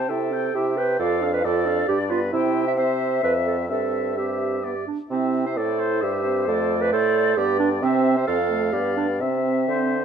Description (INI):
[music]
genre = quick classical-period movement for wind quintet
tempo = 132 BPM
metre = 3/4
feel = rubato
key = C major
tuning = A4 = 438 Hz
[part]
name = mellow silver concert flute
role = melody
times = 0.0-10.0 s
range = C5 to A5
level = -29 LUFS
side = left 14 dB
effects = none
[part]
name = warm oboe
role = second line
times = 0.0-10.0 s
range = B4 to G5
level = -31 LUFS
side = left 4 dB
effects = none
[part]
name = clear French horn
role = accompaniment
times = 0.0-10.0 s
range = A3 to F4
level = -28 LUFS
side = left 2 dB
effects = none
[part]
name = warm clarinet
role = accompaniment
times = 0.0-10.0 s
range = C4 to E5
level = -23 LUFS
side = right 7 dB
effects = none
[part]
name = clear bassoon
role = bass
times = 0.0-10.0 s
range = F2 to D3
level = -27 LUFS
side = right 1 dB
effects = none
[sound]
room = moderate large studio reverb, RT60 1.4 s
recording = dark, warm production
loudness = -20 LUFS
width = side -7 dB against mid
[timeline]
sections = 0.0-10.0 A section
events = none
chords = 0.0 C; 1.0 Dm/F; 1.9 G; 2.3 C; 3.2 Fmaj7; 3.7 C/G; 4.6 G; 5.1 C; 6.5 Dm/F; 7.4 G; 7.8 C; 8.3 F; 8.7 G7; 9.2 C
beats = 0.10 0.55 | 1.00 1.45 1.89 | 2.33 2.78 3.23 | 3.70 4.17 4.64 | 5.11 5.57 6.02 | 6.47 6.93 7.38 | 7.82 8.28 8.73 | 9.21 9.68